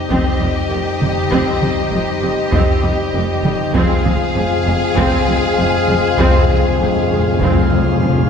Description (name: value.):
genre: cinematic, epic orchestral film score.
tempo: 99 BPM.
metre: 4/4.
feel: straight.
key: F minor.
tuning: A4 = 440 Hz.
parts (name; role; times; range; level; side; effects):
dark studio violin section; melody; 0.0-8.3 s; Eb5 to F5; -24 LUFS; left 5 dB; none.
warm symphonic violin section; second line; 0.0-8.3 s; G4 to Ab4; -22 LUFS; left 2 dB; none.
chamber organ, principal chorus; sustained chords; 0.0-8.3 s; C4 to G5; -23 LUFS; left 3 dB; none.
warm French horn section; sustained chords; 0.0-8.3 s; G3 to Eb4; -22 LUFS; left 3 dB; none.
dark symphonic viola section; accompaniment; 0.1-8.1 s; Eb3 to C4; -24 LUFS; equal; none.
rich symphonic cello section; bass; 0.1-8.1 s; F2; -23 LUFS; right 2 dB; none.
rich symphonic double bass section; bass; 0.1-8.1 s; F1; -23 LUFS; right 2 dB; none.
taiko ensemble; drums; 0.1-8.0 s; none; -20 LUFS; equal; none.
timpani; percussion; 3.8-8.3 s; F2; -20 LUFS; left 1 dB; none.
room: wet scoring stage reverb, RT60 1.6 s.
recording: heard from further back in the room.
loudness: -13 LUFS.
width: side -7 dB against mid.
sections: 0.0-8.3 A section.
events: timpani fill 3.8-8.3.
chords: 0.0 Cm/F; 3.8 Fm.